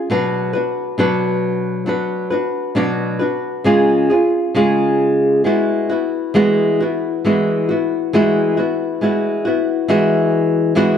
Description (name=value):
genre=pop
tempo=68 BPM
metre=4/4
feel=straight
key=unclear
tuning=A4 = 437 Hz
part: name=flamenco guitar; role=solo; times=0.0-11.0 s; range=B2 to B4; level=-14 LUFS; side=equal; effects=none
room=light reverb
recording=dark, warm production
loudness=-15 LUFS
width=side -8 dB against mid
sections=0.0-7.3 A section; 7.3-11.0 B section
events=none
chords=0.1 Bm; 3.7 C#; 5.5 Eadd9